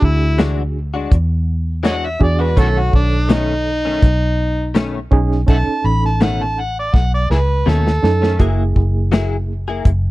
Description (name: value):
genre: straight-eighth soul blues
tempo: 82 BPM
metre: 4/4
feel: swing 53% on 16ths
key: B mixolydian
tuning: A4 = 435 Hz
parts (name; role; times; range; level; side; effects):
- overdriven harmonica; melody; 0.0-8.4 s; D4 to B5; -20 LUFS; equal; slapback echo
- barky reed electric piano; accompaniment; 0.0-9.5 s; D#3 to C#5; -22 LUFS; right 5 dB; overdrive, fast tremolo
- vintage muted fingered electric bass; bass; 0.0-10.1 s; F#1 to F#2; -17 LUFS; equal; none
- warm soul drum kit; drums; 0.0-10.0 s; hi-hat, kick drum, snare drum; -14 LUFS; equal; none
- direct-recorded clean electric guitar; stabs; 0.4-9.9 s; B2 to G#4; -22 LUFS; left 4 dB; ensemble chorus
room: little or no reverb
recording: dry, close 1970s-style studio recording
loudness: -14 LUFS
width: side -18 dB against mid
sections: 0.0-10.1 A section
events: harmonica solo 0.0-10.1; drum fill 6.9-8.4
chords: 0.0 E9; 2.6 B9; 8.4 F#9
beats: 0.39 1.11 1.84 | 2.57 3.30 4.03 4.75 | 5.48 6.21 6.94 7.67 | 8.40 9.13 9.86